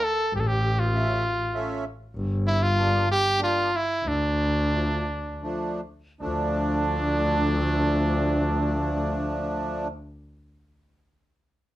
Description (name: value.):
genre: klezmer.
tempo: 74-99 BPM.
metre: 3/4.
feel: straight.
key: D minor.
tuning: A4 = 440 Hz.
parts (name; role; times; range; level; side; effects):
bright cornet; melody; 0.0-9.9 s; D4 to A4; -26 LUFS; equal; plate reverb.
accordion; accompaniment; 0.0-9.9 s; F3 to E5; -28 LUFS; right 1 dB; light tremolo tuning.
bright double bass; bass; 0.3-9.9 s; G1 to D2; -26 LUFS; equal; none.
room: moderate studio reverb, RT60 0.5 s.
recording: dark, warm production.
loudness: -22 LUFS.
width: side -14 dB against mid.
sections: 0.0-6.2 A section; 6.2-11.0 B section.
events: slowing down 2.2-6.2.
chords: 0.3 A; 2.2 Gm; 4.0 Dm.